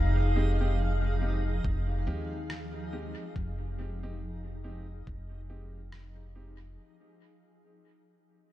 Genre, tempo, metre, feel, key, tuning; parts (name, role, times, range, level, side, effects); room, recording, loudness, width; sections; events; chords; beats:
ambient dub; 70 BPM; 4/4; swing 58% on 16ths; F minor; A4 = 442 Hz
granular cloud pad; sustained chords; 0.0-6.8 s; F3 to F5; -38 LUFS; equal; built-in reverb
upright bass; bass; 0.0-6.8 s; F1 to Eb2; -31 LUFS; equal
backwards swelling texture; texture; 0.0-6.8 s; Eb4; -46 LUFS; equal; built-in reverb
warm upright piano; stabs; 0.4-6.6 s; Ab3 to G4; -41 LUFS; right 1 dB; low-pass filter, dub echo
electronic kick drum; drums; 1.6-5.3 s; -34 LUFS; equal; overdrive
electronic rim click; drums; 2.5-6.1 s; -47 LUFS; equal; overdrive, dub echo
little or no reverb; -29 LUFS; side -14 dB against mid
0.0-6.8 A section
fade-out 0.0-6.8
0.0 Fm9
0.78 1.64 2.50 | 3.35 4.21 5.07 5.92